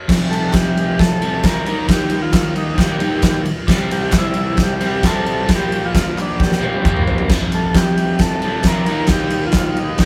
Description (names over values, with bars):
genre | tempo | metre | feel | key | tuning
garage rock duo or trio | 133 BPM | 4/4 | straight | F major | A4 = 440 Hz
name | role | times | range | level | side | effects
crunchy overdriven guitar | riff | 0.1-10.1 s | F2 to Eb4 | -22 LUFS | equal | none
oversized low-tuned drum kit | drums | 0.1-10.1 s | crash cymbal, kick drum, ride cymbal, snare drum, toms | -19 LUFS | equal | none
combo organ | melody | 0.3-10.1 s | D4 to Bb4 | -25 LUFS | equal | none
group handclap | percussion | 0.5-9.7 s | none | -33 LUFS | equal | none
room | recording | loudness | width
light reverb | band playing live in one room | -17 LUFS | mono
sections
0.1-10.1 A section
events
drum fill 6.4-7.3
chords
0.1 F; 1.7 Eb; 3.7 C; 5.5 Bb5; 7.3 F; 8.9 Eb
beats
| 0.08 0.54 0.99 1.44 | 1.89 2.34 2.79 3.24 | 3.69 4.14 4.59 5.04 | 5.50 5.95 6.40 6.85 | 7.30 7.75 8.20 8.65 | 9.10 9.55 10.00